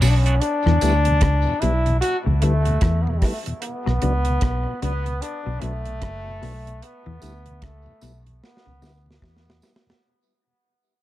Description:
dub reggae; 75 BPM; 4/4; swing 60% on 16ths; A4 = 439 Hz
bright trombone; melody; 0.0-9.2 s; G3 to F#4; -25 LUFS; left 2 dB; dub echo
mellow tonewheel organ; accompaniment; 0.0-9.9 s; E2 to E4; -31 LUFS; left 1 dB; slow rotary speaker, high-pass filter, dub echo
semi-hollow electric guitar; riff; 0.0-9.5 s; F#2 to E3; -29 LUFS; left 5 dB
vintage muted fingered electric bass; bass; 0.0-9.6 s; F#1 to E2; -20 LUFS; equal
deep reggae drum kit; drums; 0.0-10.1 s; hi-hat, kick drum, rim click, snare drum; -24 LUFS; equal
tambourine; percussion; 0.0-1.0, 7.2-9.8 s; -35 LUFS; right 4 dB; high-pass filter on perc, dub echo
small room ambience; dark, warm production; -19 LUFS; side -14 dB against mid
0.0-10.0 A section
fade-out 0.0-10.0; break 0.4-6.8; drum fill 8.4-10.0
0.4 Em; 3.6 Bm; 6.8 Em
| 0.42 1.22 2.02 2.82 | 3.62 4.42 5.22 6.02 | 6.82 7.62 8.42 9.22

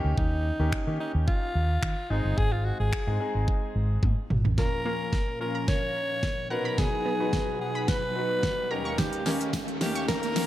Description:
dance-pop; 109 BPM; 4/4; straight; Bb minor; A4 = 441 Hz
clear concert grand piano; accompaniment; 0.0-10.5 s; Ab3 to B4; -35 LUFS; left 2 dB; sidechain pumping
vintage muted fingered electric bass; bass; 0.0-4.5 s; G1 to Eb3; -26 LUFS; equal; sidechain pumping
raspy alto saxophone; melody; 0.2-10.5 s; Eb4 to Db5; -31 LUFS; equal; diffuse ambient delay
pop drum kit; drums; 0.2-10.5 s; finger snaps, hi-hat, kick drum, snare drum, toms; -28 LUFS; equal
warm analog pad; sustained chords; 4.6-10.5 s; Eb2 to F#5; -35 LUFS; equal; chorus, sidechain pumping
analog pluck; arpeggios; 4.6-10.0 s; Bb2 to Db6; -38 LUFS; right 2 dB; chorus, sidechain pumping, diffuse ambient delay
riser; sound effects; 6.5-10.5 s; -38 LUFS; equal
tambourine; percussion; 9.0-10.5 s; -46 LUFS; right 5 dB
light reverb; high-pass filter; -25 LUFS; side -14 dB against mid
0.0-4.6 A section; 4.6-10.5 B section
drum fill 4.0-4.6, 4.6-10.5; build-up 4.6-10.5; riser 6.5-10.5
0.0 Eb7; 2.1 Ab; 4.6 Bbm; 6.5 B; 8.7 Eb7
| 0.18 0.73 1.28 1.83 | 2.38 2.93 3.48 4.03 | 4.58 5.13 5.68 6.23 | 6.78 7.33 7.88 8.43 | 8.98 9.53 10.08

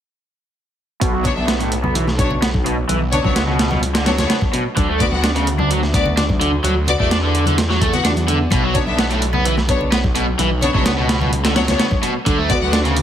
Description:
breakbeat, breaks; 128 BPM; 4/4; straight; B minor; A4 = 440 Hz
raw garage guitar; riff; 1.0-13.0 s; A2 to D4; -20 LUFS; equal; overdrive, low-pass filter, ping-pong delay
phased detuned saw bass; bass; 1.0-13.0 s; B1 to E2; -20 LUFS; equal; phaser
dusty soul sampler-style drum kit; drums; 1.0-13.0 s; hi-hat, kick drum, snare drum; -20 LUFS; right 1 dB; overdrive, small room ambience
congas; percussion; 1.0-12.7 s; -27 LUFS; left 2 dB
clear studio string section; stabs; 1.2-12.7 s; B3 to F#5; -23 LUFS; left 2 dB; vintage 12-bit sampler grit, ping-pong delay
light reverb, digital ambience; heavily compressed radio sound; -15 LUFS; side -10 dB against mid
1.0-13.0 A section
filter sweep on overdriven electric guitar 1.0-13.0
1.0 Bmadd9; 4.8 D6; 8.5 Bmadd9; 12.3 D6
| 1.01 1.48 1.95 2.42 | 2.89 3.36 3.83 4.29 | 4.76 5.23 5.70 6.17 | 6.64 7.11 7.58 8.04 | 8.51 8.98 9.45 9.92 | 10.39 10.86 11.33 11.79 | 12.26 12.73

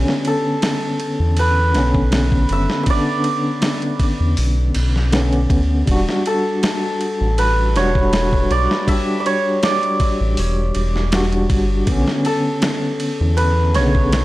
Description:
trip hop; 80 BPM; 4/4; swing 53% on 16ths; E dorian; A4 = 439 Hz
bright tine electric piano; accompaniment; 0.0-14.2 s; C#3 to G4; -21 LUFS; equal; tremolo, tape echo
round analog bass; bass; 0.0-14.2 s; E1 to E2; -18 LUFS; equal
dusty soul sampler-style drum kit; drums; 0.1-14.2 s; hi-hat, kick drum, ride cymbal, snare drum; -22 LUFS; equal
hammered dulcimer; melody; 0.3-14.2 s; A4 to E5; -21 LUFS; right 1 dB; tape echo
little or no reverb; dry, gritty hardware recording; -15 LUFS; side -17 dB against mid
0.0-14.2 A section
0.0 Bmadd9; 5.9 Em7; 11.9 Bmadd9
0.62 1.38 2.12 | 2.88 3.62 4.38 5.12 | 5.88 6.62 7.38 8.12 | 8.88 9.62 10.38 11.12 | 11.88 12.62 13.38 14.12

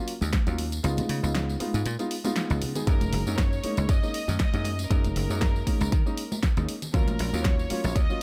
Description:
nu-disco, nu disco; 118 BPM; 4/4; swing 55% on 16ths; F# major; A4 = 440 Hz
warm grand piano; accompaniment; 0.0-8.2 s; F#3 to G#4; -35 LUFS; equal; sidechain pumping, slapback echo
pop drum kit; drums; 0.1-8.2 s; hi-hat, snare drum, tambourine; -36 LUFS; equal
dry thumbed slap bass; bass; 0.2-8.1 s; F#1 to D#3; -30 LUFS; equal
congas; percussion; 0.2-7.9 s; -39 LUFS; equal
electronic kick drum; drums; 0.3-8.1 s; -27 LUFS; equal
clear symphonic violin section; melody; 2.9-8.2 s; A#4 to D#5; -38 LUFS; equal; tape echo
digital ambience; -26 LUFS; mono
0.0-8.2 A section
kick drops out 0.8-2.9
0.0 D#m9; 0.8 C#9; 2.9 F#6; 6.9 D#m9
0.33 | 0.84 1.35 1.85 2.36 | 2.87 3.38 3.89 4.40 | 4.91 5.41 5.92 6.43 | 6.94 7.45 7.96

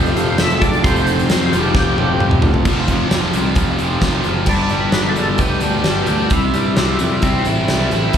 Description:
classic rock; 132 BPM; 4/4; straight; A4 = 440 Hz
overdriven tonewheel organ; melody; 0.0-8.1 s; E4 to E5; -22 LUFS; left 1 dB; slow rotary speaker, chorus vibrato, slapback echo
string machine, violins; sustained chords; 0.0-2.6 s; barely audible
biting overdriven guitar; riff; 0.0-8.2 s; F2 to E4; -18 LUFS; equal; slapback echo
fuzz picked electric bass; bass; 0.0-8.2 s; F1 to G2; -20 LUFS; equal; overdrive
huge arena drum kit; drums; 0.1-8.2 s; crash cymbal, hi-hat, kick drum, snare drum, toms; -18 LUFS; equal
clear baby grand piano; accompaniment; 0.2-2.6 s; F4 to A4; -26 LUFS; right 1 dB; slapback echo
light reverb, studio ambience; live gig heard through the venue's PA, club reverb; -14 LUFS; side -8 dB against mid
0.0-2.7 A section; 2.7-4.5 B section; 4.5-8.2 C section
drum fill 1.8-2.7
0.0 Fadd9; 2.7 F5; 4.5 G; 6.3 C
0.39 | 0.84 1.30 1.75 2.21 | 2.66 3.12 3.57 4.03 | 4.48 4.94 5.40 5.85 | 6.31 6.77 7.23 7.68 | 8.14

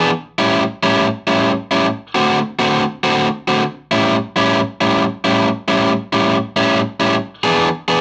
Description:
blues; 136 BPM; 4/4; swing 67% on 8ths; A mixolydian; A4 = 442 Hz
overdriven electric guitar; solo; 0.0-8.0 s; A2 to G#4; -16 LUFS; equal
moderate studio ambience, RT60 0.4 s; band playing live in one room, faint mains hum; -16 LUFS; mono
0.1-8.0 A section
0.1 A7; 1.9 D7; 3.6 A7; 7.1 E7
| 0.10 0.54 0.98 1.42 | 1.86 2.30 2.74 3.18 | 3.62 4.06 4.50 4.94 | 5.38 5.83 6.27 6.71 | 7.15 7.59

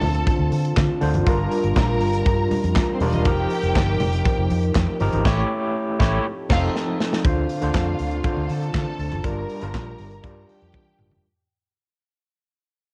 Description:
disco; 120 BPM; 4/4; straight; G minor; A4 = 440 Hz
bright studio string section; second line; 0.0-11.2 s; C4 to Bb5; -32 LUFS; equal; cassette tape
overdriven tine electric piano; accompaniment; 0.0-11.3 s; D3 to C#5; -28 LUFS; equal; medium tremolo, cassette tape
mellow French horn section; sustained chords; 0.0-11.2 s; F3 to Bb4; -33 LUFS; equal; cassette tape
vintage muted fingered electric bass; bass; 0.0-11.2 s; E1 to D3; -26 LUFS; equal
modern studio drum kit; drums; 0.0-11.2 s; crash cymbal, handclaps, hi-hat, kick drum, snare drum, toms; -26 LUFS; equal; cassette tape
congas; percussion; 0.0-11.2 s; -33 LUFS; equal
light reverb; home recording on cassette; -21 LUFS; mono
0.0-7.2 A section; 7.2-11.2 B section
band accent 5.3-7.2; drum fill 6.7-7.2, 10.7-11.2; fade-out 7.2-11.2
0.0 Dm7; 1.3 Gm7; 3.3 F9sus4; 5.3 A7; 6.2 F7; 7.2 Dm7; 9.2 Gm7
0.27 0.77 | 1.27 1.76 2.26 2.76 | 3.26 3.76 4.26 4.75 | 5.25 5.75 6.25 6.75 | 7.25 7.74 8.24 8.74 | 9.24 9.74 10.24 10.74

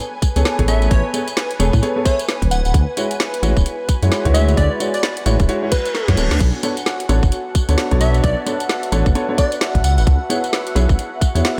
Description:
UK garage, two-step garage; 131 BPM; 4/4; swing 60% on 16ths; B dorian; A4 = 440 Hz
warm analog pad; sustained chords; 0.0-11.6 s; B4 to F#5; -32 LUFS; equal; chorus, sidechain pumping
garage drum kit; drums; 0.0-11.6 s; crash cymbal, hi-hat, rim click, snare drum, tambourine; -27 LUFS; equal
ethereal airy pad; texture; 0.0-11.6 s; F#4 to A5; -32 LUFS; equal; ensemble chorus, built-in reverb, phaser, sidechain pumping
electronic kick drum; drums; 0.2-11.3 s; -19 LUFS; equal
warm grand piano; stabs; 0.4-11.5 s; G#3 to E5; -25 LUFS; equal; vintage 12-bit sampler grit, diffuse ambient delay
dark detuned saw bass; bass; 0.4-11.4 s; D1 to A2; -18 LUFS; equal
plucky unison lead; melody; 0.7-10.0 s; B4 to F#5; -26 LUFS; equal; diffuse ambient delay
reverse cymbal; sound effects; 5.6-6.4 s; -32 LUFS; equal
light reverb; -17 LUFS; mono
0.0-11.6 A section
reverse cymbal 5.6-6.4; drum fill 5.9-6.4
0.0 Amaj9; 2.5 Dmaj9#11; 6.4 Bm9; 9.8 C#m7
0.45 | 0.91 1.37 1.83 2.28 | 2.74 3.20 3.66 4.12 | 4.57 5.03 5.49 5.95 | 6.41 6.86 7.32 7.78 | 8.24 8.70 9.15 9.61 | 10.07 10.53 10.99 11.44

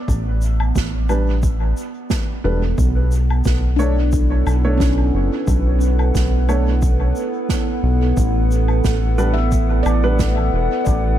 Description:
ambient dub; 89 BPM; 4/4; swing 54% on 16ths; B minor; A4 = 442 Hz
warbly tape-like pad; sustained chords; 0.0-11.2 s; B3 to F#5; -24 LUFS; right 2 dB; chorus, built-in reverb
round analog bass; bass; 0.1-11.2 s; E1 to B1; -17 LUFS; equal
electronic kick drum; drums; 0.1-11.0 s; -22 LUFS; equal
shaker, woodblock and snare drum; drums; 0.1-11.0 s; -29 LUFS; right 3 dB; dub echo
dark upright piano; stabs; 1.1-10.2 s; G3 to C#5; -27 LUFS; right 2 dB; dub echo
handpan; arpeggios; 2.4-11.2 s; C#4 to E5; -27 LUFS; left 3 dB; tape echo
little or no reverb; dark, warm production; -15 LUFS; side -12 dB against mid
0.0-11.2 A section
0.0 A9sus4; 2.8 Bm9; 8.2 Asus4
| 0.08 0.76 1.43 2.10 | 2.78 3.45 4.13 4.80 | 5.47 6.15 6.82 7.50 | 8.17 8.85 9.52 10.19 | 10.87

